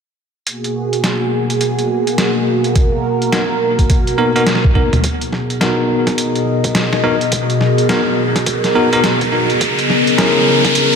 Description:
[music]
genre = glitch hop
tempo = 105 BPM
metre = 4/4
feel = swing 62% on 16ths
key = G# minor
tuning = A4 = 437 Hz
[part]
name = warm analog pad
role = sustained chords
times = 0.5-11.0 s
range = B2 to A#4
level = -17 LUFS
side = equal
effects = chorus, sidechain pumping
[part]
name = boom bap sampler-style drum kit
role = drums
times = 0.5-11.0 s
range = hi-hat, snare drum, toms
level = -19 LUFS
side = equal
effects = studio reverb
[part]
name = electronic kick drum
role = drums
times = 2.8-10.7 s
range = none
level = -16 LUFS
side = equal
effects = high-pass filter on kick, studio reverb
[part]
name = bell-like tine electric piano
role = stabs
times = 3.3-10.7 s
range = B3 to A#4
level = -18 LUFS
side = left 1 dB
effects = fast stereo tremolo, sidechain pumping, low-pass filter, tape echo
[part]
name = riser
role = sound effects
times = 7.4-11.0 s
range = none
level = -19 LUFS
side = right 1 dB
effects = none
[part]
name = warbly tape-like pad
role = texture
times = 5.5-11.0 s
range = G#4 to C#6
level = -20 LUFS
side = equal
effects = chorus, built-in reverb, sidechain pumping
[sound]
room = wet plate reverb, RT60 3.5 s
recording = dreamy mix soaked in reverb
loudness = -12 LUFS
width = side -6 dB against mid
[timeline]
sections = 0.5-5.0 A section; 5.0-11.0 B section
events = drum fill 4.6-5.0; build-up 5.0-11.0; riser 7.4-11.0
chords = 0.5 G#m9; 9.6 A#m7b5

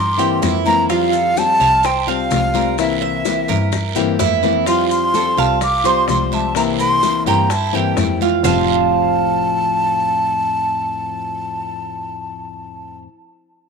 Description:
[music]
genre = latin, Cuban son and guajira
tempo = 127 BPM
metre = 4/4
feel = straight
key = F major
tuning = A4 = 440 Hz
[part]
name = breathy jazz flute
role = melody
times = 0.0-13.0 s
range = E5 to D6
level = -18 LUFS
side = equal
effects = none
[part]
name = Cuban tres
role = arpeggios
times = 0.0-13.0 s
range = E4 to F5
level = -20 LUFS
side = right 13 dB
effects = none
[part]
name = clear double bass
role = bass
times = 0.0-13.0 s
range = F1 to G2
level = -23 LUFS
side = right 1 dB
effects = none
[part]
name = nylon-string guitar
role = accompaniment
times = 0.2-13.1 s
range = F2 to F4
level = -22 LUFS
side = left 12 dB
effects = none
[part]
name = bongos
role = percussion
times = 0.2-8.6 s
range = none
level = -28 LUFS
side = left 12 dB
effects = none
[part]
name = congas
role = percussion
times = 0.2-8.6 s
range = none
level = -27 LUFS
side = left 14 dB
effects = none
[part]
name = maracas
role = percussion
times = 0.2-8.6 s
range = none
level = -33 LUFS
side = left 14 dB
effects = none
[part]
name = guiro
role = percussion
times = 0.4-8.6 s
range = none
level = -31 LUFS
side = right 16 dB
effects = none
[sound]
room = moderate spring reverb, RT60 2.3 s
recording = 1960s-style stereo with parts hard left and right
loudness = -14 LUFS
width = side -5 dB against mid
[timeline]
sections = 0.0-4.7 A section; 4.7-8.4 B section; 8.4-12.2 C section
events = drum fill 4.0-4.7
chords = 0.0 C7; 0.9 Fadd9; 2.8 C7; 4.7 Fadd9; 6.6 C7; 8.4 Fadd9

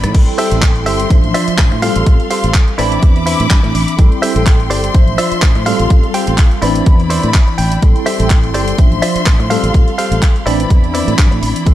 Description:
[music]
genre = filtered disco house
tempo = 125 BPM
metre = 4/4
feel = swing 55% on 16ths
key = unclear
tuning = A4 = 440 Hz
[part]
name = tine electric piano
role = accompaniment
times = 0.0-11.7 s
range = E3 to B5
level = -18 LUFS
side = equal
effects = medium stereo tremolo, phaser, vintage 12-bit sampler grit, sidechain pumping
[part]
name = warm symphonic string section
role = sustained chords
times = 0.0-11.7 s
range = F3 to D6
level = -21 LUFS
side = left 2 dB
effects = sidechain pumping
[part]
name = fingered electric bass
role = bass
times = 0.0-11.7 s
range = G1 to A2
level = -18 LUFS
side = equal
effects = sidechain pumping
[part]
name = house drum kit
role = drums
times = 0.0-11.7 s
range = crash cymbal, handclaps, hi-hat, rim click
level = -21 LUFS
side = right 1 dB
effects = sidechain pumping on hats, sidechain pumping on cymbals
[part]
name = electronic kick drum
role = drums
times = 0.1-11.7 s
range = none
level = -10 LUFS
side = equal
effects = none
[part]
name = direct-recorded clean electric guitar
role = riff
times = 0.4-11.5 s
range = E4 to G5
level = -20 LUFS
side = equal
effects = sidechain pumping
[sound]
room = light reverb, digital ambience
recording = none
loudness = -10 LUFS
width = side -13 dB against mid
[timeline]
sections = 0.0-11.7 A section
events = clean electric guitar fill 6.9-7.8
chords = 0.1 Am7; 1.1 Dm9/A; 1.8 G9sus4/A; 2.8 Cmaj9/A; 4.0 Am7; 4.9 Dm9/A; 5.7 G9sus4/A; 6.6 Cmaj9/A; 7.8 Am7; 8.8 Dm9/A; 9.5 G9sus4/A; 10.5 Cmaj9/A

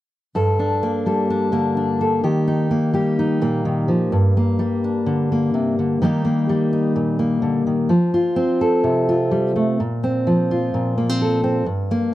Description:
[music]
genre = folk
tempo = 127 BPM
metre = 4/4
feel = straight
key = G minor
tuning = A4 = 438 Hz
[part]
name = fingerpicked steel-string acoustic guitar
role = accompaniment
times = 0.3-12.1 s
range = G2 to A4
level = -17 LUFS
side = equal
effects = none
[sound]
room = studio reverb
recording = dry, close 1970s-style studio recording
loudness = -17 LUFS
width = side -15 dB against mid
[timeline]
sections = 0.4-4.1 A section; 4.1-12.1 B section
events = none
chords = 0.4 Gmadd9; 2.2 Eb; 4.1 Gm; 6.0 Eb; 7.9 F; 9.8 Bbsus2

